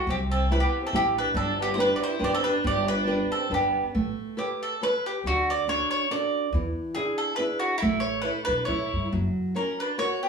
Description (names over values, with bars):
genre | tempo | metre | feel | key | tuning
italian folk, Italian serenade | 139 BPM | 3/4 | straight | G major | A4 = 440 Hz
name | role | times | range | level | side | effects
bowl-back mandolin | melody | 0.0-10.3 s | E4 to D5 | -26 LUFS | right 1 dB | none
rich violin | second line | 0.0-3.9, 8.2-10.3 s | B3 to G4 | -33 LUFS | right 4 dB | none
flamenco guitar | accompaniment | 0.1-10.3 s | C3 to C#5 | -30 LUFS | right 1 dB | none
upright bass | bass | 0.1-9.3 s | F#1 to B2 | -29 LUFS | equal | none
room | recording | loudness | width
moderate studio reverb, RT60 0.6 s | band playing live in one room, small room reverb | -23 LUFS | side -5 dB against mid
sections
0.0-4.0 A section; 4.0-10.3 B section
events
none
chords
0.0 C; 1.4 G; 4.0 Aadd9; 5.3 D; 6.5 E7; 7.8 A; 9.1 F#